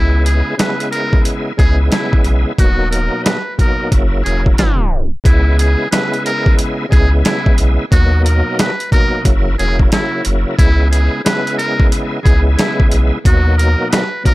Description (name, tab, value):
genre	hip hop, boom-bap hip-hop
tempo	90 BPM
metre	4/4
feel	swing 63% on 16ths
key	C# dorian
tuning	A4 = 440 Hz
part	trumpet with metal mute	melody	0.0-14.3 s	E4 to B4	-21 LUFS	equal	high-pass filter, low-pass filter
part	bright tonewheel organ	accompaniment	0.0-14.3 s	B2 to E4	-19 LUFS	equal	overdrive, chorus vibrato, fast rotary speaker, cassette tape, high-pass filter, low-pass filter
part	soft dub sub bass	bass	0.0-13.8 s	D#1 to D#2	-14 LUFS	equal	none
part	boom bap sampler-style drum kit	drums	0.3-14.3 s	hi-hat, kick drum, snare drum	-13 LUFS	equal	none
room	little or no reverb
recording	tape stop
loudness	-11 LUFS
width	side -19 dB against mid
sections	0.0-5.3 A section; 5.3-14.3 B section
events	tape stop 4.6-5.3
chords	0.0 C#m7; 2.6 Bmaj7/D#; 3.9 F#7; 4.6 B6; 5.3 C#m7; 7.9 Bmaj7/D#; 9.3 F#7; 10.6 C#m7; 13.3 Bmaj7/D#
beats	0.58 1.25 1.92 | 2.58 3.25 3.92 4.58 | 5.25 5.92 6.58 7.25 | 7.92 8.59 9.25 9.92 | 10.59 11.25 11.92 12.59 | 13.25 13.92